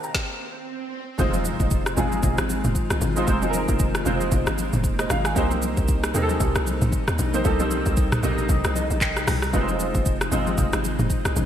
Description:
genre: amapiano.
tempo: 115 BPM.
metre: 4/4.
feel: swing 58% on 16ths.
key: F minor.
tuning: A4 = 440 Hz.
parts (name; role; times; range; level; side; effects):
warm grand piano; accompaniment; 0.0-11.5 s; Ab3 to Bb5; -26 LUFS; right 2 dB; ensemble chorus.
airy breathy pad; sustained chords; 0.0-11.5 s; C3 to C5; -31 LUFS; left 2 dB; chorus, sidechain pumping.
afro-pop drum kit; drums; 0.0-11.5 s; handclaps, hi-hat, kick drum, rim click, shaker, snare drum, toms; -24 LUFS; equal; gated reverb.
swell and impact; sound effects; 0.0-3.3 s; none; -35 LUFS; equal; none.
hollow log drum bass; bass; 1.2-11.5 s; F1 to Eb2; -26 LUFS; equal; none.
congas; percussion; 1.3-11.5 s; none; -33 LUFS; left 4 dB; none.
room: light reverb, digital ambience.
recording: bright 1980s-style digital production.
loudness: -20 LUFS.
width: side -10 dB against mid.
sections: 0.0-1.2 A section; 1.2-11.5 B section.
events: swell 0.0-1.2; filter sweep 0.0-1.2; drop 1.2-11.5; impact 1.2-3.3; grand piano fill 8.5-9.5.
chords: 0.0 Cm7; 1.2 Fm7; 5.4 Cm7; 9.5 Fm7.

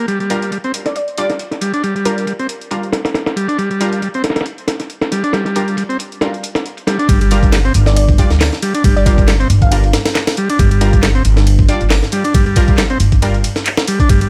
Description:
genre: breakbeat, breaks.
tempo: 137 BPM.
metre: 4/4.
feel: swing 55% on 16ths.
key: G minor pentatonic.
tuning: A4 = 441 Hz.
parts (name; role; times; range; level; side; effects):
combo organ; riff; 0.0-14.3 s; G3 to D4; -20 LUFS; equal; tape echo.
breakbeat sampler-style drum kit; drums; 0.1-14.3 s; hi-hat, kick drum, ride cymbal, snare drum; -18 LUFS; equal; low-pass filter on snare, studio reverb, low-pass filter on cymbals, low-pass filter on hats, low-pass filter on kick.
punchy analog drum machine; drums; 0.1-14.3 s; handclaps, hi-hat; -28 LUFS; equal; studio reverb.
orchestra-hit-like synth stab; stabs; 0.3-13.3 s; G3 to D5; -25 LUFS; equal; built-in reverb, tape echo.
glassy wavetable pluck; melody; 0.9-2.4, 7.9-9.8 s; Bb4 to F5; -25 LUFS; equal; chorus, old record sound, tape echo.
upright bass; bass; 7.1-14.3 s; G1 to D2; -16 LUFS; equal; none.
room: little or no reverb.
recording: none.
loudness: -14 LUFS.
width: mono.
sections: 0.0-7.1 A section; 7.1-14.3 B section.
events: drop 7.1-14.3.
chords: 0.0 Gm7.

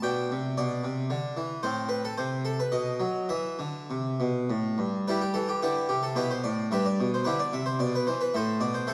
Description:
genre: classical, baroque-style suite movement for harpsichord.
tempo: 111 BPM.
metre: 3/4.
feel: rubato.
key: E minor.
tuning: A4 = 440 Hz.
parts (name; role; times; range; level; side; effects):
harpsichord; solo; 0.0-8.9 s; G2 to G5; -29 LUFS; equal; none.
room: wet recital hall reverb, RT60 1.9 s.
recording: vinyl crackle.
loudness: -29 LUFS.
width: mono.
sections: 0.0-5.1 A section; 5.1-8.9 A section.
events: none.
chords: 0.1 G/B; 1.7 Am; 2.7 B; 3.3 Em; 6.7 Em/G; 8.3 Am.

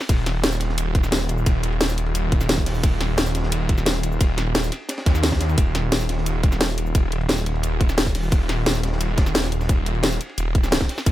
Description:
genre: dark technical drum and bass.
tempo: 175 BPM.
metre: 4/4.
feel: straight.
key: unclear.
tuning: A4 = 440 Hz.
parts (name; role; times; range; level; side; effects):
drum and bass drum kit; drums; 0.0-11.1 s; cabasa, hi-hat, snare drum; -23 LUFS; equal; none.
wide detuned saw bass; bass; 0.1-11.1 s; Eb1 to Eb2; -22 LUFS; equal; chorus, tube saturation.
crunchy breakbeat drum kit; drums; 0.1-11.1 s; hi-hat, ride cymbal, snare drum; -33 LUFS; equal; high-pass filter on cymbals, high-pass filter on hats, high-pass filter on snare, high-pass filter on room.
electronic kick drum; drums; 0.1-11.1 s; none; -19 LUFS; equal; none.
room: studio reverb.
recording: none.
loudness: -19 LUFS.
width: side -14 dB against mid.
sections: 0.0-11.1 A section.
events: none.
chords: none.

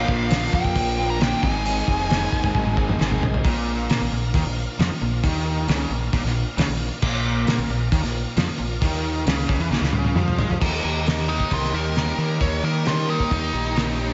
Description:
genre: classic rock.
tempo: 134 BPM.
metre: 4/4.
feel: straight.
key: Bb mixolydian.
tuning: A4 = 443 Hz.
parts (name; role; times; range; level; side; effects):
nasal lead guitar with a parked wah; melody; 0.0-3.0, 11.3-14.1 s; Eb4 to Bb5; -29 LUFS; equal; overdrive, slapback echo, digital delay.
bright tonewheel organ; sustained chords; 0.0-10.6 s; C4 to F5; -39 LUFS; equal; none.
biting overdriven guitar; riff; 0.0-14.1 s; Ab2 to Bb4; -30 LUFS; equal; spring reverb.
overdriven semi-hollow guitar; riff; 0.0-14.1 s; Ab2 to Eb4; -32 LUFS; equal; none.
growling fingered electric bass; bass; 0.0-14.1 s; F1 to Eb3; -28 LUFS; equal; overdrive.
cloth-damped thuddy drum kit; drums; 0.1-13.9 s; crash cymbal, hi-hat, kick drum, snare drum, toms; -26 LUFS; equal; none.
room: moderate concert hall reverb, RT60 2.3 s.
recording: big arena sound, nothing above 7.8 kHz.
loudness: -22 LUFS.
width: mono.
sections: 0.0-3.4 A section; 3.4-10.6 B section; 10.6-14.1 C section.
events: drum fill 2.5-3.4, 9.7-10.6; lead electric guitar solo 10.6-14.1.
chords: 0.0 Bb; 1.4 Abadd9; 3.4 Bb; 10.6 Eb.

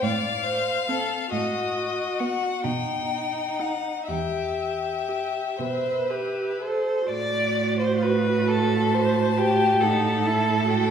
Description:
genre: classical, slow romantic movement for string quartet.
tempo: 39-47 BPM (dotted quarters).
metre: 6/8.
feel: rubato.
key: unclear.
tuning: A4 = 436 Hz.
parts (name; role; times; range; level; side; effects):
rich violin; melody; 0.0-10.9 s; D#5 to A5; -28 LUFS; left 6 dB; none.
rich violin; second line; 0.0-10.9 s; D#4 to D5; -25 LUFS; left 1 dB; none.
rich cello; bass; 0.0-10.9 s; E2 to B2; -27 LUFS; right 4 dB; none.
rich viola; accompaniment; 0.9-10.9 s; B3 to B4; -29 LUFS; right 5 dB; none.
room: wet recital hall reverb, RT60 1.4 s.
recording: heard from further back in the room.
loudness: -22 LUFS.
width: side -8 dB against mid.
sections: 0.0-7.1 A section; 7.1-10.9 B section.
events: none.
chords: 0.0 F/A; 1.3 B7/A; 2.6 B; 4.1 Em; 7.1 Am6; 9.8 B7b13/A (rootless).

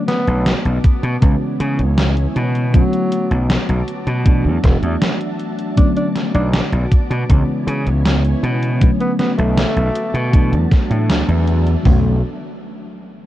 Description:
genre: vaporwave.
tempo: 79 BPM.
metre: 4/4.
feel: straight.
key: B dorian.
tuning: A4 = 440 Hz.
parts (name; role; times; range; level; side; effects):
mellow FM electric piano; accompaniment; 0.0-12.1 s; C#3 to D4; -22 LUFS; left 1 dB; phaser, wide subtle chorus, vintage 12-bit sampler grit, tape echo.
soft string machine; sustained chords; 0.0-12.2 s; B3 to D6; -28 LUFS; equal; ensemble chorus, vintage 12-bit sampler grit.
mellow alto saxophone; melody; 0.1-10.4 s; F#3 to D4; -26 LUFS; equal; tape echo.
gated 80s digital drum machine; drums; 0.1-11.8 s; hi-hat, snare drum; -22 LUFS; equal; gated reverb, gated reverb snare.
gritty slap bass; bass; 0.3-12.2 s; E1 to C#3; -17 LUFS; equal; overdrive, tube saturation.
gated 80s digital drum machine; drums; 0.8-12.0 s; hi-hat, kick drum, toms; -13 LUFS; equal; gated reverb.
room: digital ambience.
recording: dark, warm production, cassette tape, faint mains hum.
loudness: -14 LUFS.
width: side -14 dB against mid.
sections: 0.0-11.9 A section; 11.9-13.3 B section.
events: band accent 11.1-11.5.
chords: 0.0 Bm7; 1.2 C#m7; 2.7 Bm7; 4.3 E9sus4; 5.8 Bm7; 7.3 C#m7; 8.8 Bm7; 10.3 E9sus4; 11.9 Bm7.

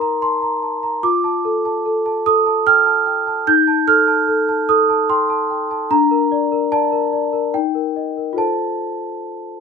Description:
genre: classical, lullaby for celesta.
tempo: 74 BPM.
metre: 3/4.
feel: rubato.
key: unclear.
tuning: A4 = 441 Hz.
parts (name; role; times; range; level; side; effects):
large celesta; solo; 0.0-9.6 s; D4 to G6; -15 LUFS; right 1 dB; none.
room: light reverb.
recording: minimal, uncompressed stereo recording.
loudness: -15 LUFS.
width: side -5 dB against mid.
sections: 0.0-9.6 A section.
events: none.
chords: 0.0 Eb5; 1.0 F; 3.5 F7/Eb; 5.9 Bb/D; 7.5 Eb; 8.4 F.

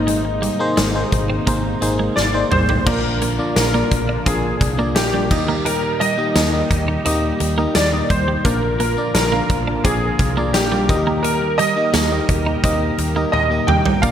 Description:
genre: 1980s-style pop.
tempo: 86 BPM.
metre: 4/4.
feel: straight.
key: Eb major.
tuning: A4 = 440 Hz.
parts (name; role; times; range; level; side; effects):
clear concert grand piano; melody; 0.0-14.1 s; Eb4 to G5; -22 LUFS; equal; analog chorus, digital delay.
FM electric piano; accompaniment; 0.0-14.1 s; Ab2 to F5; -23 LUFS; left 2 dB; chorus.
brassy analog pad; sustained chords; 0.0-14.1 s; Bb2 to Bb4; -27 LUFS; equal; chorus.
twelve-string electric guitar; riff; 0.0-14.1 s; G3 to Eb4; -25 LUFS; right 4 dB; analog chorus, digital delay.
vintage muted fingered electric bass; bass; 0.0-14.1 s; Ab1 to Eb2; -24 LUFS; equal; none.
huge arena drum kit; drums; 0.1-14.1 s; crash cymbal, hi-hat, kick drum, snare drum, tambourine, toms; -21 LUFS; equal; gated reverb.
room: moderate lush hall reverb, RT60 2.1 s.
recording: bright 1980s-style digital production.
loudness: -15 LUFS.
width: side -9 dB against mid.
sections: 0.0-2.9 A section; 2.9-14.1 B section.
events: drum fill 2.2-2.9, 13.3-14.0.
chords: 0.0 Abadd9; 2.9 Bb; 5.3 Eb; 8.4 Bb; 10.9 Eb.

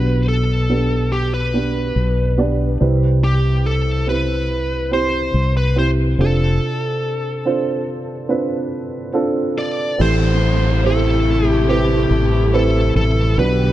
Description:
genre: pop ballad.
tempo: 71 BPM.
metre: 4/4.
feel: straight.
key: A minor.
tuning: A4 = 440 Hz.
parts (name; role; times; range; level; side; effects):
smooth overdriven lead guitar; melody; 0.0-13.7 s; G4 to D5; -23 LUFS; equal; none.
dark upright piano; accompaniment; 0.0-13.7 s; A2 to D5; -20 LUFS; right 2 dB; none.
mellow fretless electric bass; bass; 0.0-13.7 s; F1 to C2; -17 LUFS; equal; none.
warm studio string section; sustained chords; 10.0-13.7 s; C3 to G4; -22 LUFS; left 2 dB; none.
downlifter; sound effects; 10.0-13.7 s; none; -28 LUFS; equal; none.
room: light reverb.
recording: dark, warm production.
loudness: -15 LUFS.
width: side -14 dB against mid.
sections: 0.0-10.0 A section; 10.0-13.7 B section.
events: break 6.6-10.0.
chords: 0.0 G/B; 2.8 Cmaj7; 6.2 F6; 10.0 Am7.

